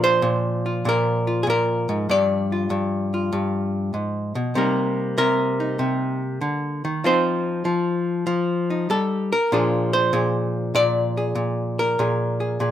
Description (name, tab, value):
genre	solo jazz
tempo	97 BPM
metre	4/4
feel	swing 68% on 8ths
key	Bb mixolydian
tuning	A4 = 440 Hz
part	archtop guitar, miked and amplified	solo	0.0-12.7 s	G2 to D5	-20 LUFS	equal	none
room	light reverb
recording	minimal, uncompressed stereo recording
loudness	-20 LUFS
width	side -10 dB against mid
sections	0.0-12.7 A section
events	none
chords	0.0 Bb; 2.1 G7(no3); 4.6 Cm7; 7.0 F5; 9.5 Bb7